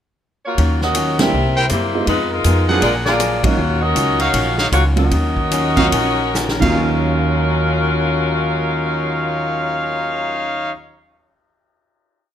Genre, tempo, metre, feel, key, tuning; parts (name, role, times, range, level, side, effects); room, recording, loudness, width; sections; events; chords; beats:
jazz, big band swing; 136-161 BPM; 4/4; swing 63% on 8ths; Eb minor; A4 = 440 Hz
dark saxophone section; melody; 0.5-10.7 s; F3 to F5; -19 LUFS; left 1 dB
archtop guitar, miked and amplified; accompaniment; 0.6-10.9 s; Bb2 to Ab4; -27 LUFS; left 4 dB
upright bass; bass; 0.6-10.7 s; Bb1 to Gb2; -20 LUFS; equal
swinging big-band drum kit; drums; 0.6-6.7 s; crash cymbal, hi-hat, kick drum, ride cymbal, rim click, snare drum; -24 LUFS; equal
warm upright piano; accompaniment; 1.2-10.7 s; Eb2 to F4; -23 LUFS; right 5 dB
bright trumpet section; stabs; 1.6-10.7 s; D4 to G5; -22 LUFS; equal
light reverb; close, detailed microphones; -15 LUFS; side -10 dB against mid
0.0-0.6 pickup bar; 0.6-6.8 A section; 6.8-10.3 final hit
band accent 1.1, 3.4; slowing down 3.6-6.8; drum fill 6.3-6.8
0.0 Bbm; 0.6 Ebm9; 1.3 C7; 2.1 Fm7b5; 2.8 Bb7b13; 3.6 Ebm9
0.21 | 0.58 0.95 1.33 1.70 | 2.08 2.45 2.83 3.20 | 3.58 3.95 4.33 4.72 | 5.11 5.51 5.92 6.34 | 6.77 7.21 7.66 8.10 | 8.54 8.98 9.42 9.86